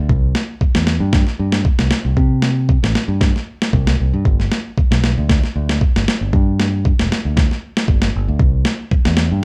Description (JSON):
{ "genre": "highlife guitar band", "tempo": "116 BPM", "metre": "4/4", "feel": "swing 53% on 16ths", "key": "unclear", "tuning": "A4 = 439 Hz", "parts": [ { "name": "fingered electric bass", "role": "bass", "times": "0.0-9.4 s", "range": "E1 to C3", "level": "-20 LUFS", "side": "equal", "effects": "none" }, { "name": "boom bap sampler-style drum kit", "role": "drums", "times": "0.1-9.3 s", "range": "kick drum, snare drum", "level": "-18 LUFS", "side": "equal", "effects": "none" } ], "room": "light reverb", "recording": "band playing live in one room", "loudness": "-17 LUFS", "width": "mono", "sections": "0.0-9.4 A section", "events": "none", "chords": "none" }